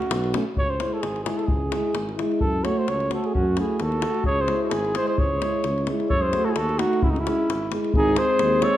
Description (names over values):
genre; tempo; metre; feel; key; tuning
balkan folk, Balkan brass band; 130 BPM; 2/4; swing 55% on 16ths; C# harmonic minor; A4 = 441 Hz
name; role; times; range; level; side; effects
dark cornet; melody; 0.0-8.8 s; D#4 to C#5; -25 LUFS; right 1 dB; tape echo
warm clarinet; second line; 0.0-0.3, 3.3-8.8 s; B#3 to A4; -31 LUFS; left 2 dB; none
davul; percussion; 0.0-8.7 s; none; -28 LUFS; left 1 dB; none
dark tuba; bass; 0.1-8.7 s; G#1 to F#2; -28 LUFS; equal; none
dark French horn; accompaniment; 0.3-8.8 s; B#3 to F#4; -30 LUFS; left 5 dB; none
dark euphonium; accompaniment; 0.3-8.8 s; G#3 to A3; -30 LUFS; right 4 dB; none
room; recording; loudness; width
wet recital hall reverb, RT60 1.3 s; dark, warm production; -21 LUFS; side -13 dB against mid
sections
0.6-7.9 A section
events
none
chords
0.0 F#m; 0.6 C#m; 2.4 F#m; 4.3 C#m; 6.1 F#m; 7.0 C#m; 7.9 G#